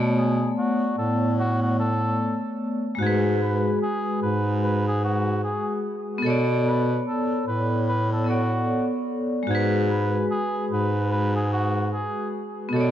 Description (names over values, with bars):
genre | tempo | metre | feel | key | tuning
lo-fi hip hop | 74 BPM | 4/4 | swing 58% on 16ths | unclear | A4 = 440 Hz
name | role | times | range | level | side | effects
vibraphone with medium hard mallets | accompaniment | 0.0-12.9 s | G#3 to D5 | -24 LUFS | left 1 dB | cassette tape, low-pass filter
clear bass clarinet | bass | 0.0-12.9 s | G#2 to B2 | -25 LUFS | equal | none
trumpet with cup mute | melody | 0.2-12.3 s | F#4 to B4 | -30 LUFS | equal | low-pass filter, analog delay
room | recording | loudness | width
wet lush hall reverb, RT60 1.8 s, small room ambience | dreamy mix soaked in reverb, cassette tape | -22 LUFS | side -11 dB against mid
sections
0.0-12.9 A section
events
none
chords
0.0 Bm9; 3.0 G#m7; 6.2 Bm9; 9.5 G#m7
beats
0.56 1.37 2.18 | 2.99 3.80 4.61 5.42 | 6.24 7.05 7.86 8.67 | 9.48 10.29 11.10 11.91 | 12.72